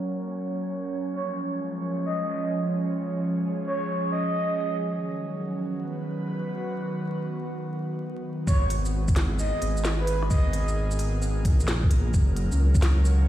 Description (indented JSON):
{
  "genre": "future garage",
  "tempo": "131 BPM",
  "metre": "4/4",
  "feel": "swing 66% on 16ths",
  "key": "G# dorian",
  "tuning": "A4 = 440 Hz",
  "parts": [
    { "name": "airy breathy pad", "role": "sustained chords", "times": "0.0-13.3 s", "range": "D#3 to C#5", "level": "-29 LUFS", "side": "right 1 dB", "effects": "chorus, sidechain pumping" },
    { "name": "breathy flute-like synth lead", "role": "melody", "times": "1.1-4.8, 8.5-10.7 s", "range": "B4 to D#5", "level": "-31 LUFS", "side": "right 1 dB", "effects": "lush chorus, ping-pong delay" },
    { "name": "dark detuned saw bass", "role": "bass", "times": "8.5-13.3 s", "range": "F#1 to C#2", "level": "-24 LUFS", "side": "equal", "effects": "sidechain pumping" },
    { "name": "electronic kick drum", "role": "drums", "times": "8.5-12.8 s", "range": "none", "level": "-21 LUFS", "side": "equal", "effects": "small room reverb" },
    { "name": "organic electronic drum kit", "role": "drums", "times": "8.5-13.2 s", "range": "hi-hat, rim click, shaker, snare drum", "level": "-34 LUFS", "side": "equal", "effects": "low-pass filter on perc, small room reverb, low-pass filter on hats, low-pass filter on snare" }
  ],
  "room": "moderate concert hall reverb, RT60 2.1 s",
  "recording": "played on a big sound system in a bare room, large studio reverb, vinyl crackle, low-pass filter",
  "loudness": "-24 LUFS",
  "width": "side -13 dB against mid",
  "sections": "0.0-8.5 A section; 8.5-13.3 B section",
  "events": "filter sweep 0.0-8.5",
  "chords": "0.0 F#; 1.1 C#; 4.8 B; 8.5 G#madd9; 12.1 F#"
}